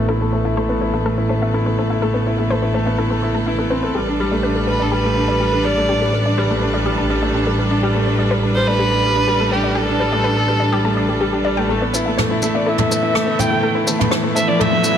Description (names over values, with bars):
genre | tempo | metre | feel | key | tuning
piano and strings electronica | 124 BPM | 4/4 | straight | unclear | A4 = 440 Hz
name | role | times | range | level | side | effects
warm string quartet | sustained chords | 0.0-15.0 s | E3 to B4 | -26 LUFS | right 1 dB | none
wide unison pluck | arpeggios | 0.0-14.9 s | G4 to B5 | -26 LUFS | left 3 dB | digital delay
clear upright piano | riff | 0.0-15.0 s | G3 to A4 | -19 LUFS | equal | low-pass filter, digital delay
rich studio double bass section | bass | 0.0-11.7 s | A1 | -22 LUFS | equal | none
rich violin | melody | 4.7-15.0 s | G4 to G5 | -20 LUFS | right 1 dB | low-pass filter
riser | sound effects | 13.3-15.0 s | none | -25 LUFS | equal | none
jazz brush drum kit | drums | 11.9-14.9 s | rim click, shaker, toms | -21 LUFS | right 1 dB | low-pass filter on toms, low-pass filter on snare, low-pass filter on perc, low-pass filter on room
room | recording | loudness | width
moderate echo chamber reverb, RT60 1.7 s | none | -15 LUFS | side -9 dB against mid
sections
0.0-11.7 A section; 11.7-15.0 B section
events
fade-in on string quartet 0.0-11.7; filter sweep on upright piano 0.0-11.7; filter sweep on synth arpeggio sound 0.0-11.7; build-up 11.7-15.0; filter sweep on violin 11.7-15.0; riser 13.3-15.0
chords
0.0 Amadd9; 4.0 Gadd9/A; 11.7 Amadd9